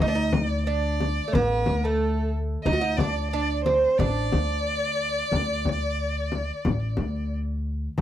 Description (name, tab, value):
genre	Turkish makam ensemble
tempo	90 BPM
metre	4/4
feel	straight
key	D makam hicaz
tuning	A4 = 439 Hz
part	rich violin	melody	0.0-7.3 s	A4 to Eb5	-28 LUFS	equal	none
part	oud	second line	0.0-7.3 s	A3 to F#4	-27 LUFS	right 5 dB	none
part	upright bass	bass	0.0-8.0 s	A1 to D2	-27 LUFS	equal	none
part	frame drum	percussion	0.0-8.0 s	none	-26 LUFS	left 3 dB	none
room	little or no reverb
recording	dry, close 1970s-style studio recording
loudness	-23 LUFS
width	side -11 dB against mid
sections	0.0-8.0 A section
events	none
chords	none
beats	| 0.01 0.68 1.34 2.00 | 2.67 3.33 4.00 4.66 | 5.33 5.99 6.65 7.32 | 7.98